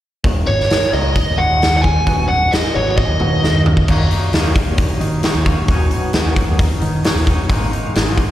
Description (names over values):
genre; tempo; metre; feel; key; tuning
quiet-loud alternative rock; 132 BPM; 4/4; straight; Eb minor; A4 = 440 Hz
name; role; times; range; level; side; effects
twangy electric guitar; arpeggios; 0.2-8.3 s; Eb2 to Eb4; -24 LUFS; left 1 dB; tremolo, slapback echo
growling picked electric bass; bass; 0.2-8.1 s; Eb1 to Eb3; -18 LUFS; equal; overdrive
big rock drum kit; drums; 0.2-8.3 s; crash cymbal, hi-hat, kick drum, snare drum, toms; -17 LUFS; equal; none
biting lead guitar; melody; 0.5-3.6 s; Db5 to Ab5; -18 LUFS; right 1 dB; overdrive, slapback echo, digital delay
room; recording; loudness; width
studio reverb; live gig heard through the venue's PA, recital hall reverb; -13 LUFS; side -13 dB against mid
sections
0.2-3.9 A section; 3.9-8.3 B section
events
drum fill 3.0-3.9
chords
0.2 Eb5; 2.1 B/D#; 3.9 Ebm; 5.7 Badd9/D#; 7.5 Absus2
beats
| 0.24 0.70 1.15 1.61 | 2.06 2.52 2.97 3.43 | 3.88 4.33 4.79 5.24 | 5.69 6.14 6.59 7.04 | 7.50 7.95